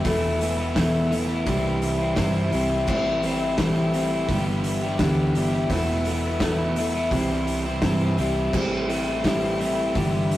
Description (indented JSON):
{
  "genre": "folk rock and heartland rock",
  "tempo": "85 BPM",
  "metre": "4/4",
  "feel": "straight",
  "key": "A minor",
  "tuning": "A4 = 439 Hz",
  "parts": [
    { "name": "picked steel-string acoustic guitar", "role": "accompaniment", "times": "0.0-10.4 s", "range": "E2 to E4", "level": "-24 LUFS", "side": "left 1 dB", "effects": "none" },
    { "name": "bright tonewheel organ", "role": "sustained chords", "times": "0.0-10.4 s", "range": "G4 to C6", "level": "-39 LUFS", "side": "right 2 dB", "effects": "none" },
    { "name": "crunchy overdriven guitar", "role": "riff", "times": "0.0-10.4 s", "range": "E2 to G4", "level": "-27 LUFS", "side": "right 1 dB", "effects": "none" },
    { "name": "hollow-body short-scale fingered electric bass", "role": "bass", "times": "0.0-10.4 s", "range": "E1 to G2", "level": "-30 LUFS", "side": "equal", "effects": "none" },
    { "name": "loose indie drum kit", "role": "drums", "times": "0.0-10.4 s", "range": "crash cymbal, hi-hat, kick drum, snare drum", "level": "-29 LUFS", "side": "equal", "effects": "none" }
  ],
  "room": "moderate stone room reverb, RT60 1.0 s",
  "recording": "rough rehearsal-room recording, warm saturation",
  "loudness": "-21 LUFS",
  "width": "side -14 dB against mid",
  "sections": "0.0-10.4 A section",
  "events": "none",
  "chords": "0.0 Esus4; 1.5 C; 2.9 Am7; 4.3 G6; 5.7 Esus4; 7.1 C; 8.5 Am7"
}